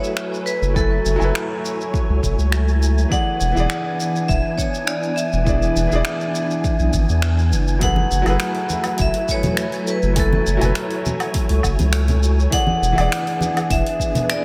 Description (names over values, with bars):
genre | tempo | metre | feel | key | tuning
sunset chillout | 102 BPM | 4/4 | straight | F# minor | A4 = 441 Hz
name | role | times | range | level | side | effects
vibraphone with hard mallets | melody | 0.0-14.4 s | A4 to F#5 | -26 LUFS | equal | delay
clear grand piano | accompaniment | 0.0-14.4 s | E3 to G#5 | -30 LUFS | equal | delay
soft string machine | sustained chords | 0.0-14.4 s | E3 to G#5 | -28 LUFS | equal | phaser, ensemble chorus
deep house drum kit | drums | 0.0-14.4 s | finger snaps, hi-hat, shaker, woodblock | -30 LUFS | equal | none
wind-like tuned noise texture | texture | 0.0-14.4 s | G#5 | -39 LUFS | equal | built-in reverb
round analog bass | bass | 0.6-13.8 s | E1 to E2 | -20 LUFS | equal | none
electronic kick drum | drums | 0.8-14.1 s | none | -25 LUFS | equal | none
congas | percussion | 8.0-14.3 s | none | -28 LUFS | equal | none
room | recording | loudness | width
moderate plate reverb, RT60 2.5 s | dreamy mix soaked in reverb | -19 LUFS | mono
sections
0.0-14.4 A section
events
none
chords
0.0 F#m11; 3.1 E7; 7.8 F#m11; 12.5 E7